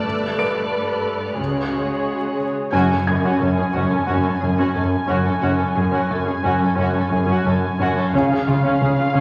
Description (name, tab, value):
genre	cinematic, suspense film score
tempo	89 BPM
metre	4/4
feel	straight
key	F# harmonic minor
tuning	A4 = 440 Hz
part	muted chamber violin section	second line	0.0-9.2 s	C#4 to D5	-28 LUFS	equal	none
part	muted studio viola section	accompaniment	0.0-9.2 s	G#3 to A4	-27 LUFS	equal	none
part	muted chamber double bass section	bass	0.0-9.2 s	F#1 to C#2	-30 LUFS	equal	none
part	muted chamber violin section	texture	0.0-2.4 s	E6 to F#6	-38 LUFS	equal	none
part	muted chamber cello section	bass	0.1-9.2 s	F#2 to C#3	-26 LUFS	equal	none
part	felt-muted upright piano	texture	0.4-8.2 s	B4 to D7	-33 LUFS	equal	none
part	muted symphonic violin section	melody	2.7-9.2 s	E#5 to G#5	-28 LUFS	equal	none
part	gritty driven synth bass	riff	2.7-9.2 s	F#2 to C#3	-25 LUFS	equal	none
room	wet scoring stage reverb, RT60 1.9 s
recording	vinyl crackle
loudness	-20 LUFS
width	mono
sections	0.0-2.7 A section; 2.7-9.2 B section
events	band accent 2.7-3.4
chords	0.0 Gadd9; 1.4 C#sus4; 2.7 F#sus2; 8.1 C#